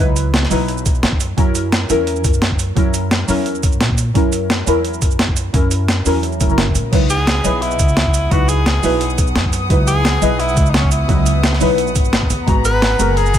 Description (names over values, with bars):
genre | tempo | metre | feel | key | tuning
liquid drum and bass | 173 BPM | 4/4 | straight | C# dorian | A4 = 443 Hz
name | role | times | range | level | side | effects
deep mellow chord stab | accompaniment | 0.0-13.4 s | F#3 to A#5 | -20 LUFS | equal | chorus, phaser, ping-pong delay
upright bass | bass | 0.0-13.4 s | F#1 to A#2 | -19 LUFS | equal | none
breakbeat sampler-style drum kit | drums | 0.2-13.4 s | cabasa, crash cymbal, hi-hat, snare drum | -20 LUFS | right 1 dB | none
electronic kick drum | drums | 0.9-13.4 s | none | -17 LUFS | equal | none
rich chamber string section | sustained chords | 6.9-13.4 s | B3 to D#6 | -24 LUFS | left 2 dB | sidechain pumping
clear tenor saxophone | melody | 7.1-13.4 s | C#4 to B4 | -21 LUFS | equal | dub echo
room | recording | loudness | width
small room ambience | none | -13 LUFS | side -10 dB against mid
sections
0.0-13.4 A section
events
none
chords
0.0 C#m11; 1.2 F#7; 6.9 C#m11; 12.5 G#m9